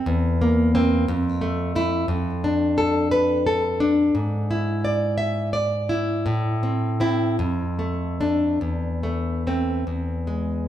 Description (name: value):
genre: romantic piece for solo classical guitar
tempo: 47-60 BPM (dotted quarters)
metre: 6/8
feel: rubato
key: A minor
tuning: A4 = 442 Hz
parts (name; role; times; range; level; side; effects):
- nylon-string guitar; solo; 0.0-10.7 s; E2 to E5; -20 LUFS; equal; none
room: wet recital hall reverb, RT60 1.6 s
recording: recorded in a church or concert hall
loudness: -20 LUFS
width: side -11 dB against mid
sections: 0.0-10.7 A section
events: none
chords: 0.1 C7/E; 1.1 Fmaj7; 2.1 Dm/F; 4.1 E7/G#; 6.3 Am; 7.4 Dm/F; 8.6 Am/E; 9.9 E